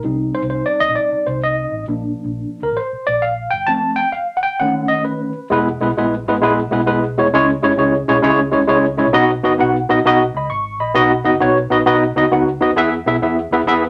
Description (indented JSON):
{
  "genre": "uptempo 1960s-style soul",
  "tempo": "132 BPM",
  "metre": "4/4",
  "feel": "swing 66% on 8ths",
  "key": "Bb major",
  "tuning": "A4 = 439 Hz",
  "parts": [
    { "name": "tine electric piano", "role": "accompaniment", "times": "0.0-13.8 s", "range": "D#3 to C#6", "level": "-17 LUFS", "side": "equal", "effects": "overdrive" },
    { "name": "vintage muted fingered electric bass", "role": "bass", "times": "0.0-13.9 s", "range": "E1 to E2", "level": "-29 LUFS", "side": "equal", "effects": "none" }
  ],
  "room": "wet studio ambience, RT60 0.5 s",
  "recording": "none",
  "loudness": "-17 LUFS",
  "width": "mono",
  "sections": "0.0-5.5 A section; 5.5-13.9 B section",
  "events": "tine electric piano solo 0.0-5.5",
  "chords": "0.0 Cm; 1.9 Bb; 3.7 F; 4.6 B7; 5.5 E; 7.3 C#m; 9.1 B; 12.8 E"
}